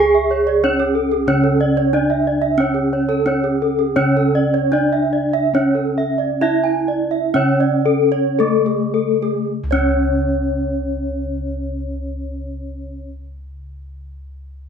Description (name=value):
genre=gamelan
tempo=51-92 BPM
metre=4/4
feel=straight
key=C# pelog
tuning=A4 = 437 Hz
part: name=gamelan-type bronze metallophone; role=melody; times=0.0-13.1 s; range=A3 to G#4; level=-19 LUFS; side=equal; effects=none
part: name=gamelan-type bronze metallophone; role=arpeggios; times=0.0-13.1 s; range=A4 to G#5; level=-21 LUFS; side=left 3 dB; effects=none
part: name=gamelan-type bossed gongs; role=bass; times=0.0-13.0 s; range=C#2 to G#4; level=-23 LUFS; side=right 1 dB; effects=none
part: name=gamelan-type bronze metallophone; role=arpeggios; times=0.1-13.1 s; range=G#4 to G#5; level=-23 LUFS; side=right 6 dB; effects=none
room=moderate large studio reverb, RT60 0.9 s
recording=band playing live in one room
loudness=-15 LUFS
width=side -7 dB against mid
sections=0.0-9.5 A section; 9.5-14.3 B section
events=slowing down 2.6-9.5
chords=none